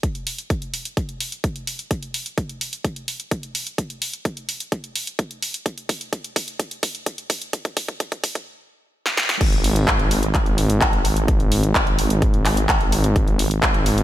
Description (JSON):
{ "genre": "EDM, festival progressive house", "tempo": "128 BPM", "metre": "4/4", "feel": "straight", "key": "unclear", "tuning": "A4 = 440 Hz", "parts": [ { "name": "big-room dance drum kit", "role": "drums", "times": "0.0-14.0 s", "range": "crash cymbal, handclaps, hi-hat, snare drum", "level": "-24 LUFS", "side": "equal", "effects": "none" }, { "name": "electronic kick drum", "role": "drums", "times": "0.0-13.7 s", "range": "none", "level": "-22 LUFS", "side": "equal", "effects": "none" }, { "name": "detuned saw bass", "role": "bass", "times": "9.4-14.0 s", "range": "G#1", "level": "-20 LUFS", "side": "equal", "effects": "sidechain pumping" } ], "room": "light reverb", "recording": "high-pass filter", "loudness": "-20 LUFS", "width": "side -13 dB against mid", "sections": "0.0-9.4 A section; 9.4-14.0 B section", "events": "build-up 0.0-9.4; filter sweep 0.0-9.4; drum fill 1.9-8.5, 9.1-9.4; drop 9.4-14.0", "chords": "none" }